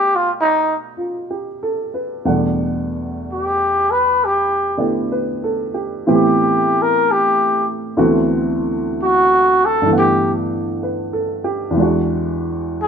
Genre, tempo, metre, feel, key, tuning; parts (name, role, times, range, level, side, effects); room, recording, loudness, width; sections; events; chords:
jazz ballad; 63 BPM; 4/4; swing 66% on 8ths; A4 = 444 Hz
growling trumpet; melody; 0.0-12.9 s; D#4 to B4; -15 LUFS; left 1 dB
warm baby grand piano; accompaniment; 0.0-12.9 s; D2 to F#5; -18 LUFS; right 1 dB
light reverb; minimal, uncompressed stereo recording; -15 LUFS; side -7 dB against mid
0.0-12.9 A section
trumpet solo 0.0-12.9
0.0 B7alt; 2.2 Em11; 6.1 Am9; 8.0 D13; 9.9 Gmaj13; 11.8 E7